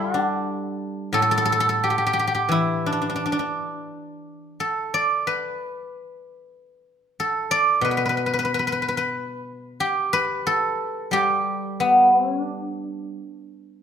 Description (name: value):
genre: chinese traditional, Chinese solo plucked strings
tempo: 80-95 BPM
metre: 4/4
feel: rubato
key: D zhi mode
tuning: A4 = 440 Hz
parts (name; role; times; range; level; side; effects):
- guzheng; solo; 0.0-13.8 s; A2 to D5; -20 LUFS; equal; none
room: light reverb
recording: minimal, uncompressed stereo recording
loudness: -20 LUFS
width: side -8 dB against mid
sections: 0.0-13.8 A section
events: none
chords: none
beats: 0.47 | 1.15 1.83 2.51 3.21 | 3.90 4.59 5.26 5.92 | 6.57 7.20 7.84 8.49 | 9.14 9.80 10.47 11.13 | 11.81 12.49 13.18